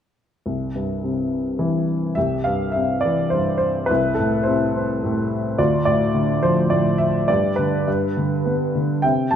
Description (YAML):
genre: classical, lyrical solo piano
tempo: 105 BPM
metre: 3/4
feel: rubato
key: C major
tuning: A4 = 440 Hz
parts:
  - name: warm upright piano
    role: solo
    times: 0.5-9.4 s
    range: C2 to A5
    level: -18 LUFS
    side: equal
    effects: none
room: moderate scoring stage reverb, RT60 1.6 s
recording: minimal, uncompressed stereo recording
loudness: -18 LUFS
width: side -8 dB against mid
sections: 0.5-2.2 A section; 2.2-9.4 B section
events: none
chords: 0.5 C; 3.9 Am/C; 5.6 Dm; 7.3 G5